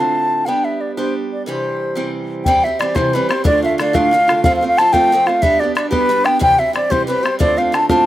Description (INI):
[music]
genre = celtic folk, Celtic jig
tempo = 122 BPM (dotted quarters)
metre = 6/8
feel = straight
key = C major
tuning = A4 = 441 Hz
[part]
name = bright wooden flute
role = melody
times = 0.0-8.1 s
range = B4 to A5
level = -15 LUFS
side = left 1 dB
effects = none
[part]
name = picked acoustic archtop guitar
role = accompaniment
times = 0.0-8.1 s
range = D2 to G4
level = -20 LUFS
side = right 2 dB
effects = slapback echo
[part]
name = bodhran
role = percussion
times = 2.5-8.0 s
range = none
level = -20 LUFS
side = left 1 dB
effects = none
[sound]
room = light reverb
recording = recorded outdoors, with no room sound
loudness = -13 LUFS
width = side -14 dB against mid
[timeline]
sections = 0.0-2.5 A section; 2.5-8.1 A section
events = none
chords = 0.5 G; 1.5 C; 3.5 Dm; 4.4 F; 5.4 G; 6.4 C; 7.4 Dm7